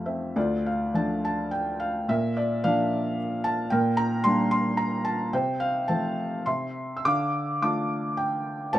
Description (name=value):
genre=classical, lyrical solo piano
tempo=98-114 BPM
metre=3/4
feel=rubato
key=unclear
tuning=A4 = 440 Hz
part: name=felt-muted upright piano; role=solo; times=0.0-8.8 s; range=D2 to E6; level=-24 LUFS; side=equal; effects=none
room=light reverb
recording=minimal, uncompressed stereo recording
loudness=-24 LUFS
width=side -13 dB against mid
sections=0.4-8.8 A section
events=none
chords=0.4 Dm; 2.1 Bb; 3.7 Gm/Bb; 5.3 F/C; 6.5 C; 7.1 Dm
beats=| 0.36 0.95 1.52 | 2.08 2.64 3.18 | 3.71 4.24 4.78 | 5.33 5.89 6.47 | 7.06 7.63 8.19 | 8.75